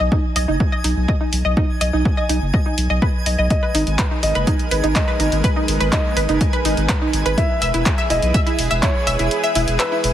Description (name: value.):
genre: progressive house.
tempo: 124 BPM.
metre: 4/4.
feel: straight.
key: unclear.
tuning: A4 = 441 Hz.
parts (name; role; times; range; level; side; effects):
analog pluck; arpeggios; 0.0-10.0 s; D#4 to E5; -22 LUFS; right 1 dB; analog chorus, sidechain pumping, tape echo.
saturated sub bass; bass; 0.0-10.1 s; E1 to B1; -20 LUFS; equal; sidechain pumping.
twinkling granular texture; texture; 0.0-10.1 s; Ab5; -32 LUFS; right 2 dB; built-in reverb, sidechain pumping.
electronic kick drum; drums; 0.1-8.9 s; none; -19 LUFS; equal; overdrive.
deep house drum kit; drums; 0.4-10.1 s; handclaps, hi-hat; -25 LUFS; equal; overdrive.
warm grand piano; melody; 3.5-10.1 s; B4 to E5; -25 LUFS; left 1 dB; tape echo.
lush unison pad; sustained chords; 3.8-10.1 s; Ab3 to Cb5; -27 LUFS; equal; chorus, phaser, sidechain pumping.
room: light reverb.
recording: heavily compressed radio sound.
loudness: -16 LUFS.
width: side -11 dB against mid.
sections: 0.0-10.1 A section.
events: filter sweep on synth pluck 0.0-10.1; kick drops out 9.3-10.1.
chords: 0.0 B; 3.5 Abmadd9; 7.4 E.